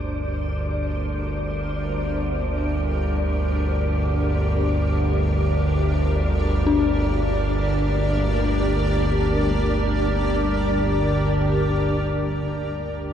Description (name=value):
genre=dark ambient drone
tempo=free time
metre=none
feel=none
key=G minor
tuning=A4 = 440 Hz
part: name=granular cloud pad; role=sustained chords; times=0.0-13.1 s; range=D4 to D5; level=-26 LUFS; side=equal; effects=built-in reverb
part: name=dark detuned synth bell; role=arpeggios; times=0.0-13.1 s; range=D4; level=-29 LUFS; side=left 7 dB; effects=chorus, phaser, ping-pong delay
part: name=analog drone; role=drone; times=0.0-13.1 s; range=G1 to D2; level=-22 LUFS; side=equal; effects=chorus
part: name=wind-like tuned noise texture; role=texture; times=0.0-12.5 s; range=D5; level=-31 LUFS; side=left 1 dB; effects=built-in reverb
room=wet cathedral reverb, RT60 6.6 s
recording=cassette tape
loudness=-20 LUFS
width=side -9 dB against mid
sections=0.0-12.5 A section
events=fade-in on synth drone 0.0-12.5; fade-in on ambient pad 0.0-12.5; fade-in on synth texture 0.0-12.5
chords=0.0 Gm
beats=free time